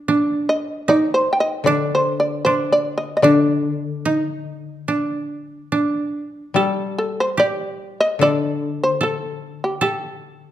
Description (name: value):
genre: japanese traditional, Japanese chamber music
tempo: 74 BPM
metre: 4/4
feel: rubato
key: D in sen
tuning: A4 = 440 Hz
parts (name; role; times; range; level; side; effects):
- koto; second line; 0.0-10.5 s; D4 to A4; -22 LUFS; right 2 dB; none
- shamisen; melody; 0.5-10.5 s; G4 to G5; -18 LUFS; equal; none
- koto; accompaniment; 1.6-10.5 s; D3 to G3; -23 LUFS; left 6 dB; none
room: wet recital hall reverb, RT60 1.4 s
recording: dark, warm production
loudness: -17 LUFS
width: side -12 dB against mid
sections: 0.0-6.6 A section; 6.6-10.5 B section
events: none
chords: none